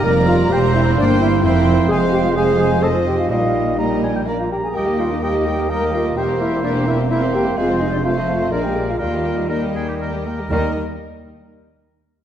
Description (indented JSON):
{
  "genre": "quick classical-period movement for symphony orchestra",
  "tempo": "117-131 BPM",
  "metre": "3/4",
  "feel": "rubato",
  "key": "Eb major",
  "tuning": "A4 = 439 Hz",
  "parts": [
    { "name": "rich chamber violin section", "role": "melody", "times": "0.0-10.8 s", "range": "C5 to Bb5", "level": "-31 LUFS", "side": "left 2 dB", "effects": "none" },
    { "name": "clear oboe", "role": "second line", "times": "0.0-10.7 s", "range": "G4 to Bb5", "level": "-27 LUFS", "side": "right 1 dB", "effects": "none" },
    { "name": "concert flute", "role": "second line", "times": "0.0-10.8 s", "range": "D5 to Bb5", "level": "-27 LUFS", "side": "left 1 dB", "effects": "none" },
    { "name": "dark clarinet", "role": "second line", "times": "0.0-10.7 s", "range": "D4 to Bb4", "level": "-21 LUFS", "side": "equal", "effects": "none" },
    { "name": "rich chamber violin section", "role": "second line", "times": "0.0-10.8 s", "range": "F4 to D5", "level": "-28 LUFS", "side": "left 4 dB", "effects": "none" },
    { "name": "mellow bassoon", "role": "accompaniment", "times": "0.0-10.7 s", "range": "F3 to Bb3", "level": "-27 LUFS", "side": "right 2 dB", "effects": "none" },
    { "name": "dark French horn section", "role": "sustained chords", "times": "0.0-10.7 s", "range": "F3 to Eb4", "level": "-26 LUFS", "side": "left 2 dB", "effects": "none" },
    { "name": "rich chamber double bass section", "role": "bass", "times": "0.0-10.8 s", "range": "E1 to Eb2", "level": "-23 LUFS", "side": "right 3 dB", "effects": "none" },
    { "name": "rich studio cello section", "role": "bass", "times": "0.0-10.8 s", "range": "Eb2 to Eb3", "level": "-25 LUFS", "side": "right 2 dB", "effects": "none" },
    { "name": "rich studio viola section", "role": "accompaniment", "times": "0.1-10.8 s", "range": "F3 to C4", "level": "-26 LUFS", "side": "equal", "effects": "none" },
    { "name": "timpani", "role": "percussion", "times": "3.3-4.0, 10.5-10.7 s", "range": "none", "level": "barely audible", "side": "none", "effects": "none" }
  ],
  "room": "wet scoring stage reverb, RT60 1.6 s",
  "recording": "dark, warm production",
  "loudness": "-15 LUFS",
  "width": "side -10 dB against mid",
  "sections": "0.0-10.5 A section; 10.5-12.0 B section",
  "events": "none",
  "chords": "0.0 Eb; 0.5 C7/E; 1.9 Fm; 2.8 F7; 3.3 Eb/Bb; 4.3 Bb; 4.7 Eb; 6.2 C7/E; 7.6 Fm; 8.0 F7; 8.5 Bb7; 9.0 Eb",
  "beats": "0.04 | 0.51 0.97 1.44 | 1.90 2.36 2.83 | 3.30 3.78 4.27 | 4.75 5.23 5.70 | 6.17 6.64 7.10 | 7.57 8.04 8.51 | 8.99 9.49 9.99 | 10.50"
}